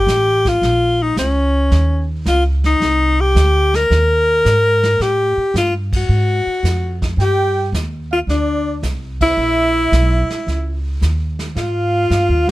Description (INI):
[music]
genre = jazz, small-group swing and bop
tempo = 110 BPM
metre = 4/4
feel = swing 68% on 8ths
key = unclear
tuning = A4 = 439 Hz
[part]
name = edgy alto saxophone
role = melody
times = 0.0-12.5 s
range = Db4 to Bb4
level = -16 LUFS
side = left 1 dB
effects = none
[part]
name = upright bass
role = bass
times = 0.0-12.5 s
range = A1 to A2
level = -17 LUFS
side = equal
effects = none
[part]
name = vintage brush drum kit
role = drums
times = 0.1-12.5 s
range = brushed snare drum, hi-hat, kick drum, ride cymbal, snare drum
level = -25 LUFS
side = right 1 dB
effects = none
[part]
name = breathy trumpet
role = second line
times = 7.2-12.5 s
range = D5 to G5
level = -24 LUFS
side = right 7 dB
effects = none
[sound]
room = little or no reverb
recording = none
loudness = -14 LUFS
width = side -17 dB against mid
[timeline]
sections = 0.0-7.2 A section; 7.2-12.5 B section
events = band accent 5.8, 9.1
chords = 0.0 N.C.; 0.6 Bbm; 1.7 C#sus2; 2.8 Abadd9; 5.0 Fadd9 (rootless); 6.1 Fm; 7.2 G5; 9.4 Eb5; 11.6 Abmaj7(no3)